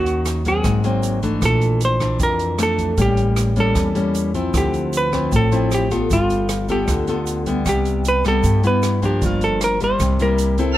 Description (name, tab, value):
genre	bossa nova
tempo	154 BPM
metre	4/4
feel	straight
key	C major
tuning	A4 = 445 Hz
part	hollow-body jazz guitar	melody	0.0-10.8 s	F4 to C5	-21 LUFS	right 1 dB	none
part	nylon-string guitar	accompaniment	0.0-10.8 s	F2 to A4	-21 LUFS	left 3 dB	none
part	upright bass	bass	0.0-10.7 s	G1 to G2	-21 LUFS	right 1 dB	none
part	open jazz drum kit	drums	0.1-10.7 s	hi-hat, kick drum, rim click	-27 LUFS	right 1 dB	none
part	tube shaker	percussion	0.1-10.8 s	none	-36 LUFS	right 12 dB	none
room	light reverb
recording	none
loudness	-16 LUFS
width	side -14 dB against mid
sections	0.0-10.8 A section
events	none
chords	0.0 Ebm7; 0.6 Ab9; 1.4 Bbmaj9#11; 3.0 A7b9; 4.5 Dm9; 6.1 G9; 7.7 Cmaj7; 9.2 Gm7; 10.0 C7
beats	0.25 0.64 1.03 | 1.42 1.81 2.20 2.59 | 2.98 3.37 3.76 4.15 | 4.54 4.93 5.32 5.71 | 6.10 6.49 6.88 7.27 | 7.66 8.05 8.44 8.83 | 9.22 9.61 10.00 10.39 | 10.78